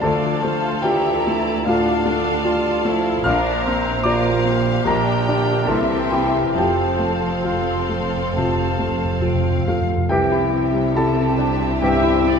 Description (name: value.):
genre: classical, romantic movement for piano and orchestra.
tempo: 65-76 BPM.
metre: 4/4.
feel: rubato.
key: F major.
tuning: A4 = 443 Hz.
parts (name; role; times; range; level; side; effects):
clear concert grand piano; melody; 0.0-12.4 s; Bb1 to F6; -20 LUFS; left 2 dB; none.
warm symphonic violin section; melody; 0.0-12.4 s; D5 to G5; -31 LUFS; left 4 dB; none.
bright clarinet; second line; 0.0-12.2 s; G4 to F5; -30 LUFS; left 2 dB; none.
bright small flute group; second line; 0.0-12.4 s; F5 to C6; -29 LUFS; equal; none.
warm studio violin section; second line; 0.0-12.4 s; C4 to Bb4; -31 LUFS; left 2 dB; none.
mellow bassoon; accompaniment; 0.0-12.2 s; D3 to G3; -28 LUFS; right 2 dB; none.
rich studio viola section; accompaniment; 0.0-12.4 s; Bb3 to E5; -28 LUFS; right 2 dB; none.
mellow French horn section; sustained chords; 0.0-12.4 s; G3 to F4; -28 LUFS; left 4 dB; none.
rich symphonic cello section; bass; 0.0-12.4 s; D2 to C3; -28 LUFS; right 4 dB; none.
rich symphonic double bass section; bass; 0.0-12.4 s; F1 to D2; -27 LUFS; right 6 dB; none.
timpani; percussion; 6.6-10.1 s; F2; -26 LUFS; left 1 dB; none.
warm oboe; second line; 10.1-12.2 s; G5; -29 LUFS; right 1 dB; none.
room: wet scoring stage reverb, RT60 1.8 s.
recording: none.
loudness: -17 LUFS.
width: side -6 dB against mid.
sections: 0.0-10.1 A section; 10.1-12.4 B section.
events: timpani fill 6.6-10.1.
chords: 0.0 Dm; 3.2 Bb; 4.9 Gm/Bb; 5.7 C7; 6.6 F; 10.1 C.